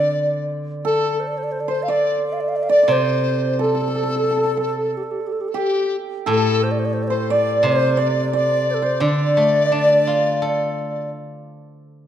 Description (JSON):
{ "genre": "chinese traditional, Chinese chamber ensemble", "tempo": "88 BPM", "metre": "4/4", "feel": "rubato", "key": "D yu mode", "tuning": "A4 = 441 Hz", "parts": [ { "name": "xiao", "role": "melody", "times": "0.0-11.1 s", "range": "G4 to F5", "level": "-22 LUFS", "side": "equal", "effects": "none" }, { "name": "hammered dulcimer", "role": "second line", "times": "0.0-11.5 s", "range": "G4 to D5", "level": "-24 LUFS", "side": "right 5 dB", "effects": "none" }, { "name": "mellow hollow large dizi", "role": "second line", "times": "0.0-11.1 s", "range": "G4 to F5", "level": "-23 LUFS", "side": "left 4 dB", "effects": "none" }, { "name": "steel-string zither", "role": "accompaniment", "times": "0.0-11.8 s", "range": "A2 to A4", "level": "-23 LUFS", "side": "equal", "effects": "none" } ], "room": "moderate recital hall reverb, RT60 1.4 s", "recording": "dark, warm production", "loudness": "-17 LUFS", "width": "side -10 dB against mid", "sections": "0.0-11.8 A section", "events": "none", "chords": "none", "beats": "0.14 | 0.85 1.54 2.23 2.91 | 3.59 4.27 4.94 5.62 | 6.29 6.97 7.66 8.34 | 9.03 9.72 10.42 11.13" }